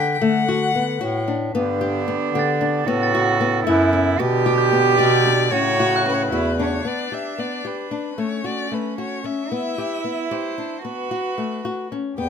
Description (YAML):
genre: contemporary instrumental, chamber music in an uneven meter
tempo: 226 BPM (eighths)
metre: 5/8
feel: straight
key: unclear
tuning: A4 = 440 Hz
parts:
  - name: warm violin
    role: melody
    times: 0.0-1.3, 5.0-12.3 s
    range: B4 to G5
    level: -26 LUFS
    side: left 5 dB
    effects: none
  - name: nylon-string guitar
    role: arpeggios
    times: 0.0-12.3 s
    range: A3 to G4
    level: -24 LUFS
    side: left 4 dB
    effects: none
  - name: mellow bass clarinet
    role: bass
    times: 0.0-6.8, 12.2-12.3 s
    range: E2 to D3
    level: -22 LUFS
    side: equal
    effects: none
  - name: glockenspiel with soft plastic mallets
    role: texture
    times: 0.0-7.1 s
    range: F#6 to B6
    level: -29 LUFS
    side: equal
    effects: none
  - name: rich cello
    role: second line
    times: 1.5-12.3 s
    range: C#4 to G4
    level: -23 LUFS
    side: right 6 dB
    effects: none
  - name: hand-pumped harmonium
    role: sustained chords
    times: 1.5-6.8 s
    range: C#3 to A4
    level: -27 LUFS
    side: right 3 dB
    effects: none
room: light reverb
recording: close, detailed microphones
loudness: -18 LUFS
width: side -7 dB against mid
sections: 0.0-6.8 A section; 6.8-12.3 B section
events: none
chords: 0.2 D; 1.5 G; 2.9 Aadd9; 4.2 G/B; 5.5 A6; 6.8 Bmadd11; 8.2 A6; 9.5 Cmaj7; 10.8 Bsus2